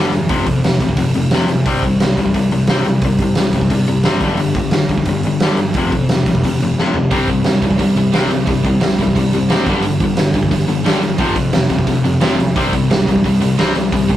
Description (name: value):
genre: punk rock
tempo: 176 BPM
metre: 4/4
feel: straight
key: unclear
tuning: A4 = 440 Hz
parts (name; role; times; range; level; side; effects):
- crunchy overdriven guitar; riff; 0.0-14.2 s; F2 to C4; -16 LUFS; left 2 dB; none
- fuzz picked electric bass; bass; 0.0-14.2 s; E1 to C3; -22 LUFS; right 1 dB; overdrive
- raw garage drum kit; drums; 0.1-14.2 s; hi-hat, kick drum, snare drum, toms; -17 LUFS; right 1 dB; none
- tight distorted guitar; riff; 7.1-14.2 s; F2 to C4; -23 LUFS; right 6 dB; distortion
room: light reverb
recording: rough rehearsal-room recording, tube saturation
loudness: -13 LUFS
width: side -12 dB against mid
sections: 0.0-14.2 A section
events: drum fill 6.8-7.1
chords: 0.3 F5; 1.7 C5; 4.2 G5; 5.7 F5; 7.1 C5; 9.7 G5; 11.2 F5; 12.6 C5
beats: | 0.30 0.64 0.98 1.32 | 1.66 2.00 2.34 2.68 | 3.02 3.36 3.70 4.04 | 4.38 4.72 5.06 5.40 | 5.74 6.08 6.42 6.76 | 7.11 7.45 7.79 8.13 | 8.47 8.81 9.15 9.49 | 9.83 10.17 10.51 10.85 | 11.19 11.53 11.88 12.22 | 12.56 12.90 13.24 13.58 | 13.92